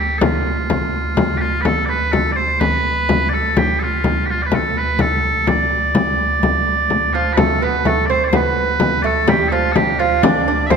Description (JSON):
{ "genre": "medieval dance", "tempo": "126 BPM", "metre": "3/4", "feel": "straight", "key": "D dorian", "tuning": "A4 = 439 Hz", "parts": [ { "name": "loud bright bagpipes", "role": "melody", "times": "0.0-10.8 s", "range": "F4 to E5", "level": "-18 LUFS", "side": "right 1 dB", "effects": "none" }, { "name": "pipe organ, stopped flute", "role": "drone", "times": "0.0-10.8 s", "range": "D2", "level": "-23 LUFS", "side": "equal", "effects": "none" }, { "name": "frame drum", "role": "percussion", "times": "0.2-10.8 s", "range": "none", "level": "-19 LUFS", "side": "left 3 dB", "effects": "none" }, { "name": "lute", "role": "second line", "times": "7.1-10.8 s", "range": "F3 to D4", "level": "-20 LUFS", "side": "right 7 dB", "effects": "none" } ], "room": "wet concert hall reverb, RT60 2.0 s", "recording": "none", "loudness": "-14 LUFS", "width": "side -6 dB against mid", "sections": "0.0-6.9 A section; 6.9-10.8 A section", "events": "none", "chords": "none" }